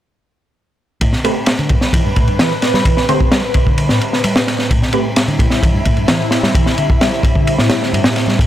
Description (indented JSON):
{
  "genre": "breakbeat, breaks",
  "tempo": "130 BPM",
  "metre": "4/4",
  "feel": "straight",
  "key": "A minor",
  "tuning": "A4 = 440 Hz",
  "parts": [
    { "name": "lush unison pad", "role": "sustained chords", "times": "1.4-8.5 s", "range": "A2 to B4", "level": "-20 LUFS", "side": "equal", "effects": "chorus, phaser, sidechain pumping" },
    { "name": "picked electric bass", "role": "riff", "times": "1.0-8.5 s", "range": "G2 to G3", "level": "-19 LUFS", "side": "equal", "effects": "low-pass filter, ping-pong delay" },
    { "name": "crunchy breakbeat drum kit", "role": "drums", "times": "1.0-8.5 s", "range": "kick drum, ride cymbal, snare drum", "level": "-14 LUFS", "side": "equal", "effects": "none" },
    { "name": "orchestra-hit-like synth stab", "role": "stabs", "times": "1.2-5.1 s", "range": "A3 to C5", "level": "-20 LUFS", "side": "right 1 dB", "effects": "built-in reverb, ping-pong delay" }
  ],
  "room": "light reverb, small room ambience",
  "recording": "none",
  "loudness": "-12 LUFS",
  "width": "side -12 dB against mid",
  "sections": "1.0-8.5 A section",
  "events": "none",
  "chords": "1.0 Am9"
}